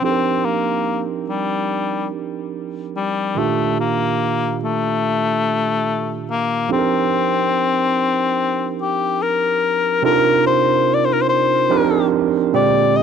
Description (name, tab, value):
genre	R&B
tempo	72 BPM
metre	4/4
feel	swing 56% on 16ths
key	unclear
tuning	A4 = 440 Hz
part	warm cor anglais	melody	0.0-13.0 s	G3 to Eb5	-18 LUFS	left 6 dB	cassette tape
part	barky tine electric piano	accompaniment	0.0-13.0 s	Bb2 to Bb4	-20 LUFS	right 10 dB	overdrive, cassette tape
room	light reverb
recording	home recording on cassette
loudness	-16 LUFS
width	side -7 dB against mid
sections	0.0-10.0 A section; 10.0-13.0 B section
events	none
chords	0.0 F13sus4; 3.4 Ebmaj7; 6.7 F13sus4; 10.0 Cm11; 11.7 F13sus4; 12.5 Bb13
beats	| 0.03 0.86 1.70 2.53 | 3.36 4.20 5.03 5.86 | 6.70 7.53 8.36 9.20 | 10.03 10.86 11.70 12.53